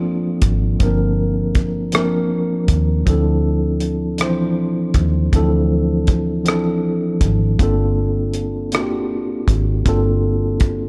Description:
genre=slow six-eight R&B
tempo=53 BPM (dotted quarters)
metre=6/8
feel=straight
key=unclear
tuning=A4 = 440 Hz
part: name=mellow tine electric piano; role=accompaniment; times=0.0-10.9 s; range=E3 to C5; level=-22 LUFS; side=equal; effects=none
part: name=vintage muted fingered electric bass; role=bass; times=0.0-10.9 s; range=G1 to Eb2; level=-22 LUFS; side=equal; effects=none
part: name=cloth-damped thuddy drum kit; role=drums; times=0.4-10.8 s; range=hi-hat, kick drum, rim click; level=-20 LUFS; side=equal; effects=none
room=studio reverb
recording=dark, warm production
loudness=-18 LUFS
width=mono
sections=0.0-10.9 A section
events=none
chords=0.0 Gm11; 3.1 Dm9; 7.6 Gm11

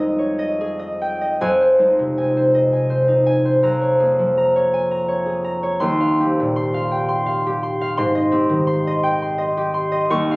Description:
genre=classical, solo harp piece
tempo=55 BPM (dotted quarters)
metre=6/8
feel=rubato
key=F minor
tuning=A4 = 438 Hz
part: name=concert harp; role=solo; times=0.0-10.4 s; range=Eb2 to Db6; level=-16 LUFS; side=equal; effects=none
room=light reverb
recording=recorded on a phone in the room, studio reverb, compression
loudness=-16 LUFS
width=side -27 dB against mid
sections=0.0-1.4 A section; 1.4-10.4 B section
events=none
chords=0.0 Fm9; 1.4 Fm7; 3.6 Bbm7/F; 5.8 Eb69; 8.0 Abmaj7

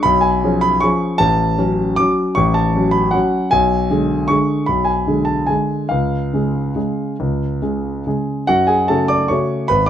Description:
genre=classical, piano waltz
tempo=134-162 BPM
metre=3/4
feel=rubato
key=F# minor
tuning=A4 = 441 Hz
part: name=warm concert grand piano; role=solo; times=0.0-9.9 s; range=G#1 to D6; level=-14 LUFS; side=equal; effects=none
room=light reverb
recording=dark, warm production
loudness=-15 LUFS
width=side -10 dB against mid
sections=0.0-8.5 A section; 8.5-9.9 B section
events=none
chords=0.1 C#7/B; 1.2 F#m/A; 3.5 G#dim/B; 5.9 C#; 8.5 F#m

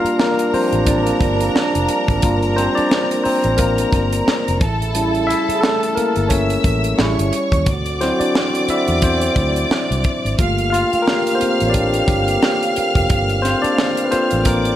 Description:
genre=lush 1970s-style soul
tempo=88 BPM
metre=4/4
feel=swing 58% on 16ths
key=G dorian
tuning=A4 = 441 Hz
part: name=clear studio violin section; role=second line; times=0.0-14.8 s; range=A4 to F6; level=-22 LUFS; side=right 1 dB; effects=none
part: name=barky tine electric piano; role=accompaniment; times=0.0-14.8 s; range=F3 to F5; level=-19 LUFS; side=left 2 dB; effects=overdrive
part: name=mellow trombone section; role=stabs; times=0.0-14.8 s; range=C#3 to G4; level=-24 LUFS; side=right 3 dB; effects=none
part: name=vintage muted fingered electric bass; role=bass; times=0.0-14.7 s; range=F1 to E2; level=-22 LUFS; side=equal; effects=none
part: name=tight funk drum kit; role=drums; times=0.1-14.8 s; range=hi-hat, kick drum, snare drum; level=-20 LUFS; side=right 1 dB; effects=none
room=light reverb, studio ambience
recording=none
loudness=-15 LUFS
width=side -12 dB against mid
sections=0.0-14.8 A section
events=tine electric piano solo 0.0-14.8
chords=0.0 Gm7; 4.6 A7; 7.7 D7; 10.4 Gm7

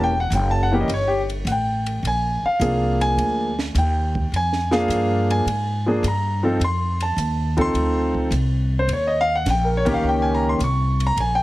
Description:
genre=jazz piano trio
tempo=105 BPM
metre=4/4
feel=swing 69% on 8ths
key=Bb mixolydian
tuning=A4 = 440 Hz
part: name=warm baby grand piano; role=melody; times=0.0-11.4 s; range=Eb3 to Db6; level=-21 LUFS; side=equal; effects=plate reverb
part: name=upright bass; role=bass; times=0.0-11.4 s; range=E1 to Ab2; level=-22 LUFS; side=equal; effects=none
part: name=compact cocktail drum kit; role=drums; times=0.3-11.4 s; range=hi-hat, kick drum, ride cymbal, snare drum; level=-33 LUFS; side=right 2 dB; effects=none
room=moderate club reverb, RT60 0.5 s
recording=heavily compressed radio sound, multiband compression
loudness=-18 LUFS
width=side -17 dB against mid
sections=0.0-11.4 A section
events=grand piano solo 0.0-11.4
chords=0.0 Em6; 2.0 Bb7; 6.6 F7; 8.9 Eb7

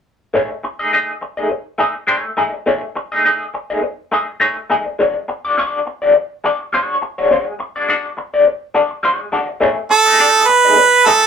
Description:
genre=funk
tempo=103 BPM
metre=4/4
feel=swing 56% on 16ths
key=unclear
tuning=A4 = 440 Hz
part: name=electric guitar through a small old amp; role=accompaniment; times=0.3-11.3 s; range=G#3 to D#5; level=-15 LUFS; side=left 2 dB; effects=wah, tremolo
part: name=bright harmonica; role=melody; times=9.9-11.3 s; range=A4 to B4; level=-8 LUFS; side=right 4 dB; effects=none
room=moderate studio ambience, RT60 0.4 s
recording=band playing live in one room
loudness=-14 LUFS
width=side -7 dB against mid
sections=0.3-9.6 A section; 9.6-11.3 B section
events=none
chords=0.3 Amaj7#11; 5.0 Dmaj7#11/G#; 9.6 B13

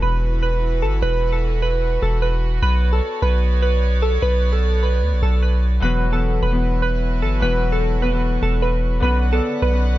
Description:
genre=hip hop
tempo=150 BPM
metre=4/4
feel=half-time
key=unclear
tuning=A4 = 440 Hz
part: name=glassy digital keys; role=melody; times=0.0-10.0 s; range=A4 to B4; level=-23 LUFS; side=right 3 dB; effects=chorus, phaser, low-pass filter, tape echo
part: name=Celtic harp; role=accompaniment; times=0.0-1.6, 5.8-10.0 s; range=C#3 to D5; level=-24 LUFS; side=left 4 dB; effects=low-pass filter
part: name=rich chamber string section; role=sustained chords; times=0.0-10.0 s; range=E3 to F#5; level=-30 LUFS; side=right 2 dB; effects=none
part: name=long sustained 808-style bass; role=bass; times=0.0-10.0 s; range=E1 to D2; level=-18 LUFS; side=equal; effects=none
room=small room ambience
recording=nothing above 7.5 kHz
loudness=-17 LUFS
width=side -15 dB against mid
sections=0.0-10.0 A section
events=none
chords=0.0 Esus2; 2.6 Bmadd9; 5.8 Esus2; 9.0 Bmadd9

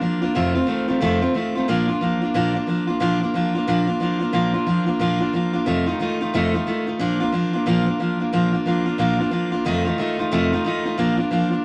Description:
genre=rock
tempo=181 BPM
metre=4/4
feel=swing 61% on 8ths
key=Bb major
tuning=A4 = 440 Hz
part: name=picked steel-string acoustic guitar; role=solo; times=0.0-11.6 s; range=F2 to F4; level=-21 LUFS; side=equal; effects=none
room=moderate studio reverb, RT60 0.5 s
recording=none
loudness=-21 LUFS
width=mono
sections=0.0-1.7 A section; 1.7-11.6 B section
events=none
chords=0.4 F7; 1.7 Bb; 5.7 F7; 7.0 Bb; 9.7 F7; 11.0 Bb

